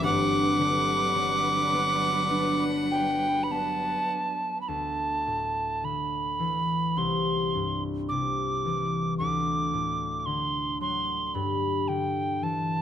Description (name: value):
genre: celtic folk, Celtic slow air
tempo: 50-56 BPM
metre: 4/4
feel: rubato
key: D mixolydian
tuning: A4 = 440 Hz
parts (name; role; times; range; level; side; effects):
- wooden whistle; melody; 0.0-12.8 s; G5 to D6; -27 LUFS; right 2 dB; none
- clear fiddle; second line; 0.0-4.1 s; F#5; -32 LUFS; left 3 dB; none
- concert harp; accompaniment; 0.0-12.8 s; G1 to D4; -29 LUFS; left 2 dB; none
- warm studio string section; sustained chords; 0.0-4.6 s; F#3 to B4; -33 LUFS; right 1 dB; none
room: light reverb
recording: close, detailed microphones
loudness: -25 LUFS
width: side -10 dB against mid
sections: 0.0-4.7 A section; 4.7-12.8 B section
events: none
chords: 0.0 Gmaj7; 4.7 Dsus2; 7.0 Cadd9; 9.2 D; 11.3 G6